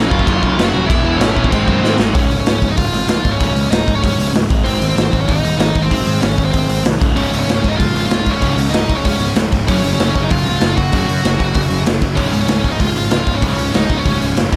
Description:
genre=punk rock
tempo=191 BPM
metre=4/4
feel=straight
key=Db major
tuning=A4 = 442 Hz
part: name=dark smooth lead guitar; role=melody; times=0.0-14.3 s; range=C4 to Gb5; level=-22 LUFS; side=equal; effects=overdrive
part: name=distorted electric guitar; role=riff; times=0.0-2.1, 12.2-14.6 s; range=Db2 to Ab3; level=-25 LUFS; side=equal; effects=none
part: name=heavy high-gain guitar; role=riff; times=0.0-2.1, 7.2-14.6 s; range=Db2 to Ab4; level=-29 LUFS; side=equal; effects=none
part: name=sludgy distorted guitar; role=riff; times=0.0-14.6 s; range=Db2 to Ab3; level=-22 LUFS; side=equal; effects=overdrive
part: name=fuzz picked electric bass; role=bass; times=0.0-14.6 s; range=Db1 to Ab2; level=-23 LUFS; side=equal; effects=overdrive
part: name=raw garage drum kit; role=drums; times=0.1-14.6 s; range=crash cymbal, hi-hat, kick drum, snare drum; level=-19 LUFS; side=equal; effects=none
room=little or no reverb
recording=none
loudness=-15 LUFS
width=mono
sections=0.0-2.1 A section; 2.1-14.6 B section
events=drum fill 1.8-2.1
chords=0.0 Gb; 0.9 E; 1.5 Ab7; 2.1 Db; 4.5 Ab; 7.0 Db; 9.7 Gb5; 12.2 Db

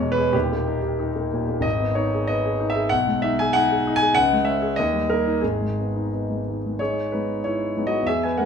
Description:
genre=classical, romantic character piece for solo piano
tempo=85-100 BPM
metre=2/4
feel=rubato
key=G# minor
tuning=A4 = 442 Hz
part: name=warm concert grand piano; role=solo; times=0.0-8.5 s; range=D#1 to G#5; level=-20 LUFS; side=equal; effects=none
room=moderate large studio reverb, RT60 1.2 s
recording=none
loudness=-20 LUFS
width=side -7 dB against mid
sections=0.0-6.8 A section; 6.8-8.5 B section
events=none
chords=0.3 D#; 1.6 G#m; 2.9 G#m/B; 4.1 C#m; 4.8 D#; 5.4 G#m

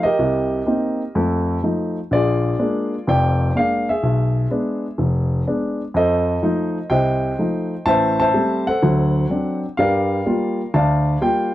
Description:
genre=solo jazz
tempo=125 BPM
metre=4/4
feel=swing 69% on 8ths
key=F mixolydian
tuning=A4 = 441 Hz
part: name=dark grand piano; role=solo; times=0.0-11.5 s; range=F1 to A5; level=-17 LUFS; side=equal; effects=none
room=light reverb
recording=close, detailed microphones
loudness=-17 LUFS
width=side -14 dB against mid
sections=0.0-11.5 A section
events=none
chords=0.2 Cm7; 1.1 F7; 2.1 Bb7; 4.0 Bdim7; 5.9 F7; 7.9 Am7; 8.8 D7; 9.8 Gm7

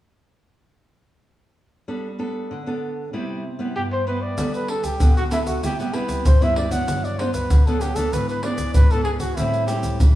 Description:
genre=samba and choro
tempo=96 BPM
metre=4/4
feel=straight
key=G major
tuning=A4 = 441 Hz
part: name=nylon-string guitar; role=accompaniment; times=1.9-10.2 s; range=G2 to A4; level=-26 LUFS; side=equal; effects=none
part: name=breathy trumpet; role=melody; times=3.8-10.0 s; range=E4 to F#5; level=-25 LUFS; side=equal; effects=none
part: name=egg shaker, surdo and pandeiro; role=percussion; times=4.4-10.2 s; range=none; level=-19 LUFS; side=equal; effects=none
room=wet stone room reverb, RT60 1.3 s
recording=band playing live in one room, small room ambience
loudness=-19 LUFS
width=side -14 dB against mid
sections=1.9-4.4 A section; 4.4-10.2 B section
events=none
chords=1.9 Gadd9; 3.1 Cmaj7; 4.4 Gadd9; 5.6 Cmaj7; 6.9 Gmaj7; 8.1 E7/G#; 9.4 Am7

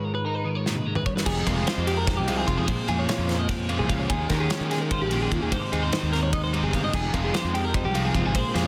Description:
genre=math rock and midwest emo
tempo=296 BPM (eighths)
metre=7/8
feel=straight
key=unclear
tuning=A4 = 436 Hz
part: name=twelve-string electric guitar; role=accompaniment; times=0.0-8.7 s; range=F2 to Bb4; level=-31 LUFS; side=equal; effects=ensemble chorus
part: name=twelve-string electric guitar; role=arpeggios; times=0.0-8.7 s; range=F4 to F5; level=-32 LUFS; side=equal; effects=spring reverb
part: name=loose indie drum kit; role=drums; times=0.7-8.6 s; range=crash cymbal, kick drum, ride cymbal, snare drum, toms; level=-31 LUFS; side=equal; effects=soft clipping on snare
part: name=fuzz fingered electric bass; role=bass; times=1.3-8.7 s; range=F1 to Eb3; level=-30 LUFS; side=equal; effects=overdrive
part: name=overdriven electric guitar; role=riff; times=1.5-8.7 s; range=Eb3 to G4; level=-34 LUFS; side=equal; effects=spring reverb
room=light reverb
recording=dense, heavily limited modern master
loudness=-25 LUFS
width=mono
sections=0.0-1.3 A section; 1.3-8.7 B section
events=break 0.0-1.3; drum fill 0.7-1.3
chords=0.0 Abm6; 1.3 Fm9; 2.7 Bbm9; 4.1 Eb9sus4; 5.5 Abmaj7; 6.9 Fm9

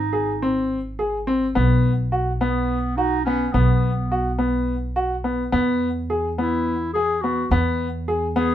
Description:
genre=contemporary instrumental, chamber music in an uneven meter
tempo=212 BPM (eighths)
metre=7/8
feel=straight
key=unclear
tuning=A4 = 440 Hz
part: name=warm clarinet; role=melody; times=0.0-8.5 s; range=B3 to G#4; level=-25 LUFS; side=right 1 dB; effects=none
part: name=upright bass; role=bass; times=0.0-8.5 s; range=Ab1 to E2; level=-24 LUFS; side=equal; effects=none
part: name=clear grand piano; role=arpeggios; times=0.1-8.5 s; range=B3 to Ab4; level=-22 LUFS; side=left 1 dB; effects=none
room=moderate studio reverb, RT60 0.7 s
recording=dark, warm production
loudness=-19 LUFS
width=side -11 dB against mid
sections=0.0-8.5 A section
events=none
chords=0.0 Ab; 1.6 B5; 5.5 E

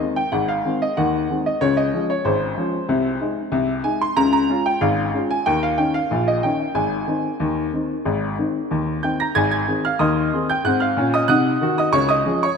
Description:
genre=ragtime piano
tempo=93 BPM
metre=2/4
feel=straight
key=Ab major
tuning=A4 = 440 Hz
part: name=clear upright piano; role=solo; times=0.0-12.6 s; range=Ab1 to Bb6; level=-18 LUFS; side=equal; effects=none
room=wet plate reverb, RT60 2.9 s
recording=dreamy mix soaked in reverb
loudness=-18 LUFS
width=side -6 dB against mid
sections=0.0-9.4 A section; 9.4-12.6 A section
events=none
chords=0.0 Ab; 1.6 Db; 2.9 Ab/C; 4.2 Db; 5.5 Eb5; 6.8 Ab; 10.6 Ab7; 11.9 Db

